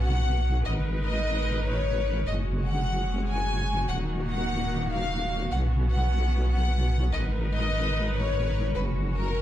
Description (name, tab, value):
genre	heavy wobble dubstep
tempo	148 BPM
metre	4/4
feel	swing 53% on 16ths, half-time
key	unclear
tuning	A4 = 441 Hz
part	warm symphonic violin section	melody	0.0-9.4 s	Bb4 to Ab5	-31 LUFS	left 2 dB	ping-pong delay
part	rich studio string section	sustained chords	0.0-9.4 s	Eb3 to Cb5	-34 LUFS	equal	none
part	wobble bass	bass	0.0-9.4 s	Eb1 to B1	-26 LUFS	equal	chorus, overdrive
part	electronic hi-hat	drums	0.0-9.4 s	none	barely audible	none	none
room	small room ambience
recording	played on a big sound system in a bare room, large studio reverb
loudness	-24 LUFS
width	side -12 dB against mid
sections	0.0-9.4 A section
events	none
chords	0.0 Bsus2; 0.6 Abmadd9; 2.3 Gbsus2; 3.9 Ebmadd9; 5.5 Bsus2; 7.1 Abmadd9; 8.8 Gbsus2